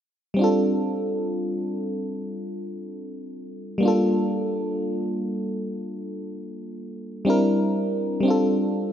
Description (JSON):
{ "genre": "R&B", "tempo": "61 BPM", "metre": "4/4", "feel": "swing 54% on 16ths", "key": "F major", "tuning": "A4 = 442 Hz", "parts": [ { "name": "FM electric piano", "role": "accompaniment", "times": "0.3-8.9 s", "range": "G3 to Bb4", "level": "-23 LUFS", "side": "equal", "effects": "chorus" } ], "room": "moderate plate reverb, RT60 3.3 s", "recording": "dark, warm production", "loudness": "-22 LUFS", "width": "side -9 dB against mid", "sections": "0.4-8.9 A section", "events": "none", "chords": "0.4 F69; 3.8 Gm9; 7.3 C9; 8.3 F69" }